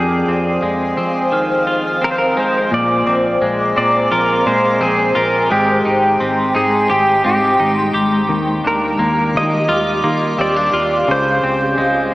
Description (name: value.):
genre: dream pop.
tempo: 86 BPM.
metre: 4/4.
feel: straight.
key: unclear.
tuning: A4 = 440 Hz.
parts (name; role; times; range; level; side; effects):
pedal steel guitar; melody; 0.0-12.1 s; G4 to Eb5; -17 LUFS; equal; analog chorus, diffuse ambient delay.
granular cloud pad; sustained chords; 0.0-12.1 s; Ab3 to Eb6; -20 LUFS; equal; built-in reverb, analog chorus.
semi-hollow electric guitar; arpeggios; 0.0-12.1 s; F2 to G4; -18 LUFS; left 1 dB; wide subtle chorus, diffuse ambient delay.
vintage muted fingered electric bass; bass; 0.0-12.1 s; Ab1 to F3; -26 LUFS; equal; none.
glockenspiel with rubber mallets; texture; 1.3-11.1 s; Bb5 to F6; -26 LUFS; equal; diffuse ambient delay.
room: wet lush hall reverb, RT60 2.5 s.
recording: dreamy mix soaked in reverb, small speaker sound.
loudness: -13 LUFS.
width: side -18 dB against mid.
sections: 0.0-2.7 A section; 2.7-12.1 B section.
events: none.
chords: 0.0 Fm7; 2.7 Bb9; 5.5 Abmaj7; 8.3 Ebmaj9; 11.1 Dbmaj7.